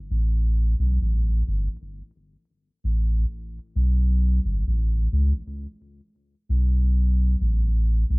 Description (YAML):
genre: reggae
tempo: 66 BPM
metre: 4/4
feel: straight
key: unclear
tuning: A4 = 444 Hz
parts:
  - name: warm sub bass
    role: solo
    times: 0.1-8.2 s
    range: G1 to C#2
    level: -20 LUFS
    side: equal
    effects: cassette tape, analog delay
room: little or no reverb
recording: home recording on cassette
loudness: -20 LUFS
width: side -30 dB against mid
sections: 0.1-8.2 A section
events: none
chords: none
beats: | 0.09 1.00 1.92 2.83 | 3.74 4.65 5.56 6.47 | 7.39